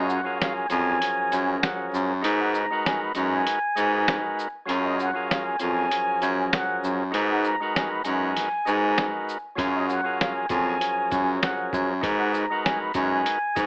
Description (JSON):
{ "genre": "hip hop, boom-bap hip-hop", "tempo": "98 BPM", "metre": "4/4", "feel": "swing 54% on 16ths", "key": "F# major", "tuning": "A4 = 440 Hz", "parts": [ { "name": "trumpet with plunger mute", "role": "melody", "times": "0.0-13.7 s", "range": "D#5 to B5", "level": "-30 LUFS", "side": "equal", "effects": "high-pass filter, low-pass filter" }, { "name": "overdriven tonewheel organ", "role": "accompaniment", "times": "0.0-13.7 s", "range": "E#3 to B4", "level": "-31 LUFS", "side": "equal", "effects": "high-pass filter, low-pass filter" }, { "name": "warm baritone saxophone", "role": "bass", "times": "0.0-13.7 s", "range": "E#2 to G#2", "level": "-27 LUFS", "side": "equal", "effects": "none" }, { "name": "boom bap sampler-style drum kit", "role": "drums", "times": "0.1-13.7 s", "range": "hi-hat, kick drum, shaker, snare drum", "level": "-30 LUFS", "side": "equal", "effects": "none" } ], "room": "light reverb", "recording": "AM radio sound", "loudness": "-25 LUFS", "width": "mono", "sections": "0.0-13.7 A section", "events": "break 0.0-9.6", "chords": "0.0 F#maj9; 2.2 G#m9; 4.7 F#maj9; 7.1 G#m9; 9.6 F#maj9; 12.0 G#m9" }